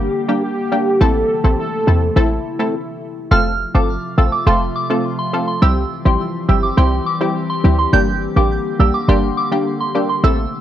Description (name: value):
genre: dancehall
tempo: 104 BPM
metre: 4/4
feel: straight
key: F major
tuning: A4 = 439 Hz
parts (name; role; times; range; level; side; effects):
- warm velvety synth lead; second line; 0.0-2.7 s; E4 to A4; -21 LUFS; equal; chorus, digital delay
- punchy chord stab; accompaniment; 0.0-10.4 s; G3 to A4; -19 LUFS; equal; chorus
- glassy FM pad; sustained chords; 0.0-10.6 s; C3 to G4; -25 LUFS; left 2 dB; ensemble chorus, built-in reverb
- short 808-style bass; bass; 0.0-10.5 s; F1 to E2; -15 LUFS; equal; none
- soft synth bell; melody; 3.3-10.3 s; C6 to G6; -20 LUFS; right 2 dB; chorus, phaser, plate reverb, digital delay
room: moderate studio reverb, RT60 0.6 s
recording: worn, warbling old tape, cassette tape, warbly pitch drift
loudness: -14 LUFS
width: side -11 dB against mid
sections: 0.0-3.3 A section; 3.3-10.6 B section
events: stop 2.7-3.3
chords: 0.0 Gm; 1.0 Am; 3.3 F; 5.6 C; 7.9 Gm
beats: 0.43 | 1.01 1.58 2.16 2.74 | 3.31 3.89 4.47 5.04 | 5.62 6.20 6.78 7.35 | 7.93 8.51 9.08 9.66 | 10.24